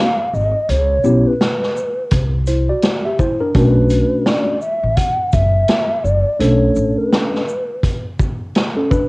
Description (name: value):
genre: hip hop, jazz-hop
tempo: 84 BPM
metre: 4/4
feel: swing 60% on 16ths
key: unclear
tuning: A4 = 440 Hz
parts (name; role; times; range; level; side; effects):
- mellow hollow long shakuhachi; melody; 0.0-8.1 s; B4 to F#5; -19 LUFS; equal; cassette tape
- mellow tine electric piano; accompaniment; 0.0-9.1 s; A3 to E5; -16 LUFS; equal; medium stereo tremolo
- upright bass; bass; 0.3-6.9 s; F#1 to C#2; -17 LUFS; equal; none
- vintage drum kit; drums; 0.3-9.1 s; hi-hat, kick drum, shaker, snare drum; -18 LUFS; equal; vintage 12-bit sampler grit
room: light reverb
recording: home recording on cassette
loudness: -14 LUFS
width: side -24 dB against mid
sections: 0.0-9.1 A section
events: none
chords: 0.0 G#5; 0.7 C#m7b5; 2.1 Cadd9; 3.5 Bm7